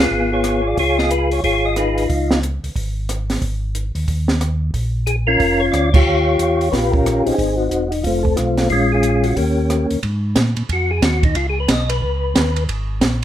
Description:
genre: soul jazz organ trio.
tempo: 181 BPM.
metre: 4/4.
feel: swing 63% on 8ths.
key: unclear.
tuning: A4 = 437 Hz.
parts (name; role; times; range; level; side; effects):
percussive tonewheel organ; melody; 0.0-2.4, 5.1-12.6 s; Ab3 to Eb5; -17 LUFS; left 1 dB; overdrive, chorus vibrato, fast rotary speaker.
mellow tonewheel organ; bass; 0.0-13.2 s; Fb1 to Bb2; -20 LUFS; equal; chorus vibrato, slow rotary speaker.
compact cocktail drum kit; drums; 0.4-13.1 s; crash cymbal, hi-hat, kick drum, ride cymbal, rim click, snare drum; -19 LUFS; right 2 dB; none.
room: light reverb.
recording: none.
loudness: -15 LUFS.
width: side -11 dB against mid.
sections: 0.0-10.0 A section; 10.0-13.2 B section.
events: band accent 5.9; tonewheel organ solo 10.0-13.2.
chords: 0.0 Db9; 3.4 Ab5; 4.7 Bbm; 6.1 Eb9; 7.4 Ab; 8.0 F; 8.7 Bbm7; 9.4 Eb7; 10.0 Absus2; 11.4 Dbsus2; 12.7 Absus2.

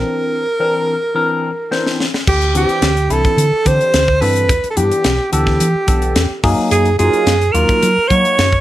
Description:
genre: electric jazz fusion.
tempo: 108 BPM.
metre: 4/4.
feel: straight.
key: unclear.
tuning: A4 = 440 Hz.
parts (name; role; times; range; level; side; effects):
breathy alto saxophone; melody; 0.0-8.6 s; G4 to Db5; -16 LUFS; right 2 dB; slapback echo, plate reverb.
barky tine electric piano; accompaniment; 0.0-8.4 s; E3 to C5; -20 LUFS; left 3 dB; phaser, plate reverb.
hollow-body short-scale fingered electric bass; bass; 0.0-8.6 s; B1 to Gb3; -17 LUFS; equal; none.
tight funk drum kit; drums; 1.7-8.6 s; crash cymbal, hi-hat, kick drum, snare drum; -18 LUFS; left 1 dB; none.
room: light reverb.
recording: none.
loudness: -12 LUFS.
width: side -14 dB against mid.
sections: 0.0-2.3 A section; 2.3-8.6 B section.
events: break 0.1-2.3; drum fill 1.7-2.3.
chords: 0.0 Bbadd9; 2.3 D9sus4; 4.5 Em7; 6.4 Gb69.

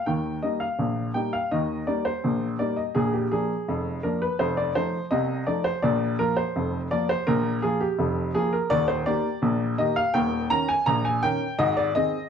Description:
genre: ragtime piano.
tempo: 83 BPM.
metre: 2/4.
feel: straight.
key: Eb major.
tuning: A4 = 439 Hz.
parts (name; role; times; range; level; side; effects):
clear upright piano; solo; 0.0-12.3 s; Eb1 to Bb5; -22 LUFS; equal; none.
room: wet club reverb, RT60 0.7 s.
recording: heard from further back in the room.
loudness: -22 LUFS.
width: side -7 dB against mid.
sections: 0.0-12.3 A section.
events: none.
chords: 0.1 Eb; 2.9 Bb; 4.4 F7; 5.8 Bb5; 8.7 Eb; 10.1 Eb5; 11.6 Ab.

